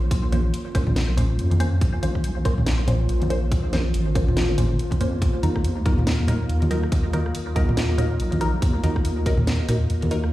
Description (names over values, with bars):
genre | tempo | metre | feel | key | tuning
deep dubstep | 141 BPM | 4/4 | swing 59% on 16ths, half-time | Bb minor | A4 = 444 Hz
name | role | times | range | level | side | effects
dark analog pad | sustained chords | 0.0-10.3 s | Bb3 to F4 | -31 LUFS | left 1 dB | chorus, phaser
deep soft wobble bass | bass | 0.0-10.3 s | Ab1 to F2 | -23 LUFS | equal | chorus, tube saturation
electronic kick drum | drums | 0.1-9.4 s | none | -22 LUFS | equal | studio reverb
garage drum kit | drums | 0.1-10.3 s | hi-hat, rim click, snare drum | -31 LUFS | equal | studio reverb
filtered dub chord stab | stabs | 0.3-10.2 s | Gb3 to C5 | -30 LUFS | right 1 dB | phaser, dub echo
congas | percussion | 0.3-10.1 s | none | -27 LUFS | equal | dub echo
room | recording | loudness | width
light reverb, digital ambience | played on a big sound system in a bare room, large studio reverb, vinyl crackle | -20 LUFS | side -16 dB against mid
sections
0.0-10.3 A section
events
none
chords
0.0 Bbmadd9; 5.2 Ebm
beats
| 0.11 0.54 0.96 1.39 | 1.81 2.24 2.67 3.09 | 3.52 3.94 4.37 4.79 | 5.22 5.64 6.07 6.49 | 6.92 7.34 7.77 8.20 | 8.62 9.05 9.47 9.90 | 10.32